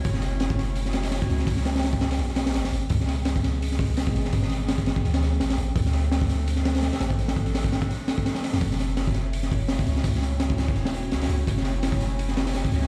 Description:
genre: drum and bass, jungle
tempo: 168 BPM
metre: 4/4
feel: swing 55% on 16ths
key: unclear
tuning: A4 = 439 Hz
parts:
  - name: warbly tape-like pad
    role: sustained chords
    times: 0.0-12.9 s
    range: E3 to C#5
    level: -38 LUFS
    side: equal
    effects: chorus, built-in reverb, phaser
  - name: long sustained 808-style bass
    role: bass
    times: 0.0-12.9 s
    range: E1 to E2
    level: -28 LUFS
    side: equal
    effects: tube saturation
  - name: crunchy breakbeat drum kit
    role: drums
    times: 0.0-12.9 s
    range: hi-hat, kick drum, snare drum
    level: -28 LUFS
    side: equal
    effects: none
room: small room ambience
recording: played on a big sound system in a bare room, stone room reverb, vinyl crackle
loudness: -25 LUFS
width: mono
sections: 0.0-12.9 A section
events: none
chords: 0.0 F#m7; 1.5 C#m7; 5.0 Dm7; 8.6 F#m7

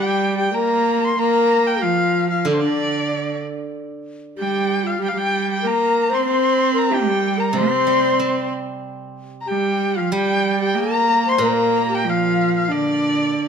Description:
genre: chinese traditional, Chinese chamber ensemble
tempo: 94 BPM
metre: 4/4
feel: straight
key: G yu mode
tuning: A4 = 440 Hz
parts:
  - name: clear erhu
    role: melody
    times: 0.0-13.5 s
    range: C5 to C6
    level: -21 LUFS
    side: left 3 dB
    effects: none
  - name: breathy bright low xiao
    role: second line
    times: 0.0-13.5 s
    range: D4 to C5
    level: -21 LUFS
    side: left 4 dB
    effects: none
  - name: clear cello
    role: second line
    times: 0.0-13.5 s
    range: D3 to C4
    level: -22 LUFS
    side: right 8 dB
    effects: none
  - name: steel-string zither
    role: accompaniment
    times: 0.0-13.3 s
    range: Bb2 to C4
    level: -28 LUFS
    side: right 2 dB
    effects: none
room: moderate recital hall reverb, RT60 1.4 s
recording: none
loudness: -16 LUFS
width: side -7 dB against mid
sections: 0.0-13.5 A section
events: none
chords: none

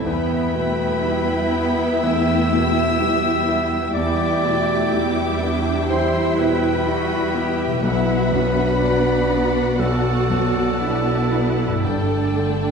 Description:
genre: cinematic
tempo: 62 BPM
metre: 4/4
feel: rubato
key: unclear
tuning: A4 = 440 Hz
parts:
  - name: warm symphonic violin section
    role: melody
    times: 0.0-12.7 s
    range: A5 to E6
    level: -30 LUFS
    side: left 2 dB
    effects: none
  - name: rich symphonic violin section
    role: second line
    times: 0.0-12.7 s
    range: D5 to G5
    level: -27 LUFS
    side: left 3 dB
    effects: none
  - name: warm clarinet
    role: second line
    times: 0.0-12.6 s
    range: A4 to E5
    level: -24 LUFS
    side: equal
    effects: none
  - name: clear grand piano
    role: accompaniment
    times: 0.0-12.7 s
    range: B1 to G4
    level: -25 LUFS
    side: left 2 dB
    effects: none
  - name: warm symphonic viola section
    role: accompaniment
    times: 0.0-12.7 s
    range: G3 to A4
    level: -24 LUFS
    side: right 1 dB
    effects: none
  - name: concert harp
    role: arpeggios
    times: 0.0-12.7 s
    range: G2 to E5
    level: -27 LUFS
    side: left 4 dB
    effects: none
  - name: clear symphonic double bass section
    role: bass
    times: 0.0-12.7 s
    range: G1 to E2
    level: -27 LUFS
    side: right 3 dB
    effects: none
  - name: rich symphonic cello section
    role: bass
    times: 0.0-12.7 s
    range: G3 to G4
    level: -26 LUFS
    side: right 4 dB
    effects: none
room: wet scoring stage reverb, RT60 1.6 s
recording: heard from further back in the room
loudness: -17 LUFS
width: side -5 dB against mid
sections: 0.0-12.7 A section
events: none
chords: 0.1 Em; 7.8 Bm; 11.9 Gsus2

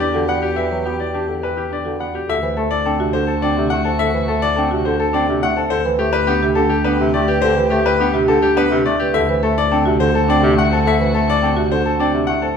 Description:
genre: classical, minimalist pattern music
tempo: 105 BPM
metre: 3/4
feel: straight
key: D mixolydian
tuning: A4 = 439 Hz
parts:
  - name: bright baby grand piano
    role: melody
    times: 0.0-12.6 s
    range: G4 to F#5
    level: -19 LUFS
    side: left 5 dB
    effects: none
  - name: clear soprano saxophone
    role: second line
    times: 0.0-12.4 s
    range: F#4 to G4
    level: -29 LUFS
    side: right 2 dB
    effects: none
  - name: marimba with medium mallets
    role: arpeggios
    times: 0.0-12.6 s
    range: C4 to D5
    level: -21 LUFS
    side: right 5 dB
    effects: none
  - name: warm double bass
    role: bass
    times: 0.0-12.4 s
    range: D2 to E2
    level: -22 LUFS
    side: equal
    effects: none
  - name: clear bass clarinet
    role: accompaniment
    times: 0.1-12.4 s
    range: C3 to D4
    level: -22 LUFS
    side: equal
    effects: none
room: wet scoring stage reverb, RT60 1.6 s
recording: small room ambience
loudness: -15 LUFS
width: side -7 dB against mid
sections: 0.0-2.3 A section; 2.3-12.6 B section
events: none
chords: 0.0 Em7; 2.3 D7; 5.7 Am9/D; 9.1 D7

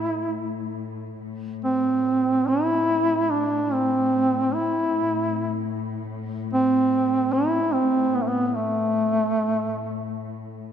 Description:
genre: caucasian folk, Caucasian lament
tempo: free time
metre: none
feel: none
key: A minor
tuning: A4 = 439 Hz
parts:
  - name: mellow duduk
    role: melody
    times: 0.0-10.2 s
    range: A3 to E4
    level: -21 LUFS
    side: right 1 dB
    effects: none
  - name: rich chamber cello section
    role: drone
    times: 0.0-10.7 s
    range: A2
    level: -32 LUFS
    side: left 6 dB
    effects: none
room: wet church reverb, RT60 2.9 s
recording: minimal, uncompressed stereo recording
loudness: -21 LUFS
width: side -8 dB against mid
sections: 0.0-10.7 A section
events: none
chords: none

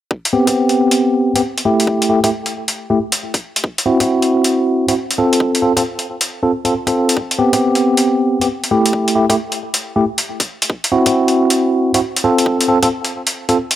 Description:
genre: UK garage, two-step garage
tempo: 136 BPM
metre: 4/4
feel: swing 65% on 16ths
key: A minor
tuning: A4 = 441 Hz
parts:
  - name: electronic kick drum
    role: drums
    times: 0.1-12.9 s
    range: none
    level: -22 LUFS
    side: equal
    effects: high-pass filter on kick
  - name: bell-like tine electric piano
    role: stabs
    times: 0.3-13.6 s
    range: A3 to A4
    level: -14 LUFS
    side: equal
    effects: medium stereo tremolo, vintage 12-bit sampler grit, low-pass filter, digital delay
  - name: electronic hi-hat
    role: drums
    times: 0.3-13.8 s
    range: none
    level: -19 LUFS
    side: left 1 dB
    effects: overdrive
room: light reverb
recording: none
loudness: -13 LUFS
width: side -12 dB against mid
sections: 0.1-13.8 A section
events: none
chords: 0.1 Am7; 1.9 Emadd11/A; 3.6 C; 5.2 F/C; 7.2 Am7; 8.9 Emadd11/A; 10.7 C; 12.2 F/C

